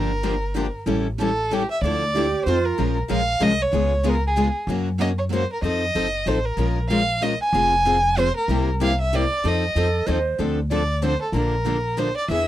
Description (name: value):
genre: acoustic string swing (jazz manouche)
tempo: 189 BPM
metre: 3/4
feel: swing 58% on 8ths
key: Bb minor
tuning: A4 = 441 Hz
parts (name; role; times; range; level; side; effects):
- warm violin; melody; 0.0-12.5 s; G4 to Ab5; -23 LUFS; right 1 dB; none
- picked steel-string acoustic guitar; accompaniment; 0.0-12.5 s; C3 to Bb4; -25 LUFS; left 6 dB; none
- picked steel-string acoustic guitar; accompaniment; 0.0-12.5 s; C3 to B4; -28 LUFS; right 6 dB; none
- upright bass; bass; 0.0-12.5 s; F1 to Gb2; -24 LUFS; equal; none
- bright reedy bansuri; second line; 2.1-2.8, 9.8-10.4 s; F4 to Db5; -24 LUFS; right 5 dB; none
room: light reverb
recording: dry, close 1970s-style studio recording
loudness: -19 LUFS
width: side -13 dB against mid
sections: 0.0-2.8 A section; 2.8-10.4 B section; 10.4-12.5 A section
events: none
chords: 0.0 Gm7; 0.9 A7; 1.8 Dmadd9; 2.5 F7; 2.8 Bbm7; 3.7 Db7; 4.7 Gb; 5.6 F7; 6.6 Bbm7; 7.5 Fm; 8.5 C7; 9.4 F7; 10.4 Dm7; 11.3 Bbmaj7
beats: 0.23 0.55 | 0.87 1.19 1.50 | 1.82 2.14 2.46 | 2.77 3.09 3.41 | 3.73 4.04 4.36 | 4.68 5.00 5.32 | 5.63 5.95 6.27 | 6.58 6.90 7.22 | 7.54 7.85 8.17 | 8.49 8.80 9.12 | 9.44 9.75 10.07 | 10.39 10.71 11.02 | 11.34 11.65 11.97 | 12.29